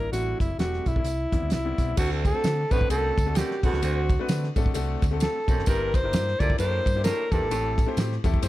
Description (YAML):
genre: uptempo 1960s-style soul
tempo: 130 BPM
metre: 4/4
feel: swing 59% on 8ths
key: D mixolydian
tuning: A4 = 440 Hz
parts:
  - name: breathy alto saxophone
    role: melody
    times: 0.0-8.0 s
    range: E4 to D5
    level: -28 LUFS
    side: equal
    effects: none
  - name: clear grand piano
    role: accompaniment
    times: 0.0-8.5 s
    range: G3 to C5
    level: -33 LUFS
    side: left 5 dB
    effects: none
  - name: hollow-body short-scale fingered electric bass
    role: bass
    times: 0.0-8.5 s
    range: E1 to D3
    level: -28 LUFS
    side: equal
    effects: none
  - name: warm soul drum kit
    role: drums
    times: 0.1-8.5 s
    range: crash cymbal, hi-hat, kick drum, ride cymbal, snare drum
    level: -26 LUFS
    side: equal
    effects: none
  - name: tambourine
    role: percussion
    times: 0.1-8.5 s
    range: none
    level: -44 LUFS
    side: right 4 dB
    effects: none
  - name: breathy baritone saxophone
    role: riff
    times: 2.0-7.7 s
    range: D2 to Bb2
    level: -34 LUFS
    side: right 5 dB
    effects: none
room: small room ambience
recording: none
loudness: -22 LUFS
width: side -16 dB against mid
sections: 0.0-2.0 A section; 2.0-8.5 B section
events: none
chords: 0.1 Am7; 1.1 Cmaj7; 2.0 D7; 5.7 Gm6; 7.5 Am7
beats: | 0.13 0.59 1.06 1.52 | 1.98 2.44 2.90 3.37 | 3.83 4.29 4.75 5.21 | 5.67 6.13 6.59 7.05 | 7.51 7.97 8.43